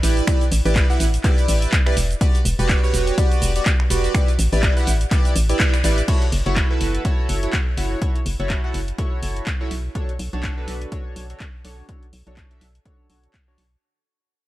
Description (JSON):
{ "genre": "deep house", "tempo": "124 BPM", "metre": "4/4", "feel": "swing 57% on 16ths", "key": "B minor", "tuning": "A4 = 440 Hz", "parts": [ { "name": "chorused polysynth", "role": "stabs", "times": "0.0-13.6 s", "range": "D4 to F#5", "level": "-25 LUFS", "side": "right 2 dB", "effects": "sidechain pumping, analog delay" }, { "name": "organ-like FM bass", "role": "bass", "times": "0.0-13.8 s", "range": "E1 to B1", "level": "-21 LUFS", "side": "equal", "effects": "tube saturation, sidechain pumping" }, { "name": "punchy analog drum machine", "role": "drums", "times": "0.0-13.7 s", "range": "crash cymbal, finger snaps, handclaps, hi-hat, shaker", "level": "-26 LUFS", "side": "equal", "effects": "none" }, { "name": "electronic kick drum", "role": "drums", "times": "0.3-13.4 s", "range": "none", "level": "-20 LUFS", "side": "equal", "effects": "none" } ], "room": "digital ambience", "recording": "none", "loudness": "-17 LUFS", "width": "side -16 dB against mid", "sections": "0.0-6.1 A section; 6.1-13.8 B section", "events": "drop 0.0-6.1; band accent 5.6; fade-out 6.1-13.8; filter sweep on analog polysynth 6.1-13.8", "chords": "0.0 A9sus4; 2.0 Em9; 4.1 A9sus4; 6.1 F#m7; 9.7 Bm9" }